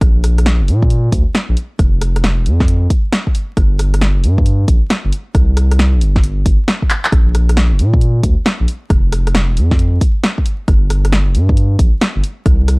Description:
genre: UK garage, two-step garage.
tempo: 135 BPM.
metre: 4/4.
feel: swing 65% on 16ths.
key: C minor.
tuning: A4 = 440 Hz.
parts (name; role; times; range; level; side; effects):
saturated sub bass; bass; 0.0-12.8 s; Eb1 to Bb2; -13 LUFS; equal; none.
electronic kick drum; drums; 0.0-12.6 s; none; -13 LUFS; equal; none.
punchy analog drum machine; drums; 0.0-12.8 s; handclaps, hi-hat, rim click, snare drum; -18 LUFS; equal; overdrive.
room: digital ambience.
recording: dry, gritty hardware recording, vinyl crackle.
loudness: -11 LUFS.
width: side -32 dB against mid.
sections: 0.0-12.8 A section.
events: drum fill 6.9.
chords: none.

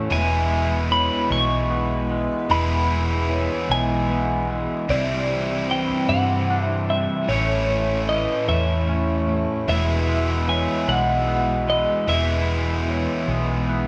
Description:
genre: rock.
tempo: 50 BPM (dotted quarters).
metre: 6/8.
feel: straight.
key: E major.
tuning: A4 = 439 Hz.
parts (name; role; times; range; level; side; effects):
warm chamber string section; sustained chords; 0.0-13.9 s; G3 to C5; -38 LUFS; equal; none.
twangy electric guitar; arpeggios; 0.0-13.9 s; A2 to D4; -34 LUFS; equal; spring reverb.
vibraphone with medium mallets; arpeggios; 0.0-13.9 s; B4 to D#6; -34 LUFS; equal; none.
biting overdriven guitar; riff; 0.0-13.9 s; A2 to E4; -30 LUFS; equal; none.
distorted electric guitar; riff; 0.0-13.9 s; A2 to E4; -30 LUFS; equal; distortion.
twelve-string electric guitar; melody; 0.1-13.7 s; C#5 to C#6; -26 LUFS; equal; none.
hollow-body short-scale fingered electric bass; bass; 0.1-13.9 s; E1 to G2; -27 LUFS; equal; none.
room: wet large studio reverb, RT60 1.1 s.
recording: band playing live in one room.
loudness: -22 LUFS.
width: mono.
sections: 0.0-13.9 A section.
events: none.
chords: 0.1 Eadd9; 4.9 Cadd9; 7.3 A; 9.7 Eadd9.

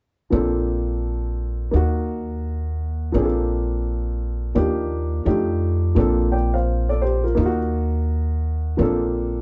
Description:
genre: hip hop.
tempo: 85 BPM.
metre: 4/4.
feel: swing 61% on 16ths.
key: Bb major.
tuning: A4 = 440 Hz.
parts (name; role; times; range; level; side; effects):
dark baby grand piano; accompaniment; 0.3-9.4 s; F3 to G5; -25 LUFS; equal; none.
upright bass; bass; 0.3-9.4 s; Bb1 to F2; -24 LUFS; equal; none.
room: light reverb.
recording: band playing live in one room, nothing above 7.8 kHz.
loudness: -22 LUFS.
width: mono.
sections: 0.3-9.4 A section.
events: none.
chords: 0.3 Bbmaj9; 1.7 Ebm; 3.1 Bbmaj9; 4.6 Ebmaj9; 5.3 F13; 6.0 Bbmaj9; 7.4 Ebm; 8.8 Bbmaj9.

